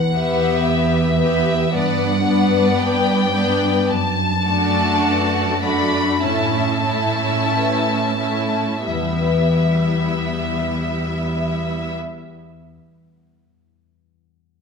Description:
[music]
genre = cinematic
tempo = 43-57 BPM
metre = 4/4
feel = rubato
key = E minor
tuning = A4 = 440 Hz
[part]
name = warm studio violin section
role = melody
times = 0.0-11.9 s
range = E5 to B5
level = -23 LUFS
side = left 4 dB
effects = none
[part]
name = concert harp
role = arpeggios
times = 0.0-12.8 s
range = E2 to B5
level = -25 LUFS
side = left 10 dB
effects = none
[part]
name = warm studio cello section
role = bass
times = 0.0-11.9 s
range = E2 to A2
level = -22 LUFS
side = right 4 dB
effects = none
[part]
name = warm studio viola section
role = accompaniment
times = 0.1-11.9 s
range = G3 to G4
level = -24 LUFS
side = equal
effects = none
[part]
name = rich studio violin section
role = second line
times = 0.2-11.9 s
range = E4 to E5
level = -23 LUFS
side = left 1 dB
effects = none
[sound]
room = moderate concert hall reverb, RT60 1.8 s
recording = none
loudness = -16 LUFS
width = side -5 dB against mid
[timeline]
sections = 0.0-8.9 A section; 8.9-14.2 B section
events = slowing down 0.0-8.9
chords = 0.0 Em; 1.7 G; 3.9 D/F#; 6.2 A; 8.9 Em

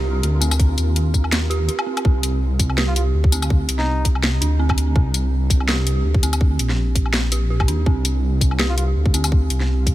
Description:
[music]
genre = half-time drum and bass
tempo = 165 BPM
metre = 4/4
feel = swing 55% on 16ths, half-time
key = C minor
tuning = A4 = 440 Hz
[part]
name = dark detuned synth bell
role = arpeggios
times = 0.0-9.9 s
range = C4 to G4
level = -27 LUFS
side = right 3 dB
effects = chorus, digital delay
[part]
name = dark detuned saw bass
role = bass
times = 0.0-9.9 s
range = Bb1 to Eb2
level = -19 LUFS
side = equal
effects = none
[part]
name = pulsing gated texture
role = texture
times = 0.0-2.1 s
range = F4 to Bb4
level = -34 LUFS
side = right 1 dB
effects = chorus, built-in reverb
[part]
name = drum and bass drum kit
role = drums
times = 0.2-9.9 s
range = hi-hat, snare drum, tambourine, woodblock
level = -24 LUFS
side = left 1 dB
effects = overdrive
[part]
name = electronic kick drum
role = drums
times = 0.6-9.9 s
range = none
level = -17 LUFS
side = equal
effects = none
[part]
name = trumpet with bucket mute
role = melody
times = 2.9-4.0, 8.7-8.8 s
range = Eb4 to F4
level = -32 LUFS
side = equal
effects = dub echo
[sound]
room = little or no reverb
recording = none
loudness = -16 LUFS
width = side -15 dB against mid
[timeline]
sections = 0.0-2.0 A section; 2.0-9.9 A section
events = drop 0.0-2.0, 2.0-9.9; break 1.7-2.0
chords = 0.0 Cmadd9; 2.0 Csus2

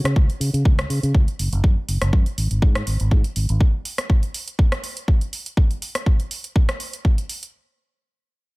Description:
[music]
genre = filtered disco house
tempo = 122 BPM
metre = 4/4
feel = swing 53% on 16ths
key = unclear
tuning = A4 = 439 Hz
[part]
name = fingered electric bass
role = bass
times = 0.0-3.6 s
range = Gb1 to Db3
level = -21 LUFS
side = equal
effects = sidechain pumping, low-pass filter
[part]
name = house drum kit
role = drums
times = 0.1-7.5 s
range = hi-hat, rim click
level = -28 LUFS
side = right 1 dB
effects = sidechain pumping on hats
[part]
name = electronic kick drum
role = drums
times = 0.2-7.2 s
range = none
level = -16 LUFS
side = equal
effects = none
[sound]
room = little or no reverb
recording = none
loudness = -18 LUFS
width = side -24 dB against mid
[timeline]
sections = 0.0-7.5 A section; 7.5-8.6 B section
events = none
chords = none

